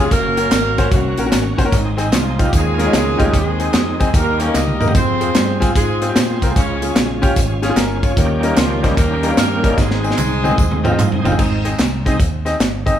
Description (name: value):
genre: uptempo gospel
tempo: 149 BPM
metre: 4/4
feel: swing 65% on 8ths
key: Ab major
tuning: A4 = 440 Hz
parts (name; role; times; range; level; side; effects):
- mellow horn section; melody; 0.0-11.0 s; F3 to Eb5; -21 LUFS; right 1 dB; none
- clear baby grand piano; accompaniment; 0.0-12.9 s; Ab2 to Eb5; -21 LUFS; left 2 dB; none
- bright tonewheel organ; sustained chords; 0.0-12.2 s; Eb3 to Ab4; -24 LUFS; right 1 dB; slow rotary speaker, overdrive, chorus vibrato
- mellow fretless electric bass; bass; 0.0-12.9 s; Gb1 to Bb2; -21 LUFS; equal; none
- modern studio drum kit; drums; 0.1-12.9 s; crash cymbal, hi-hat, kick drum, snare drum, toms; -17 LUFS; equal; none
- tambourine and handclaps; percussion; 0.1-12.9 s; none; -30 LUFS; right 1 dB; none
room: moderate large studio reverb, RT60 1.1 s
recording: band playing live in one room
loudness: -14 LUFS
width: side -10 dB against mid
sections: 0.0-11.4 A section; 11.4-13.0 B section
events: drum fill 4.5-5.0, 9.8-11.4; tonewheel organ solo 11.4-13.0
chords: 0.1 Gb; 1.7 Ab; 2.5 Eb9sus4; 3.3 Ab/Eb; 4.1 Eb; 5.0 Fm; 6.6 Db; 8.2 Eb7; 9.8 Ab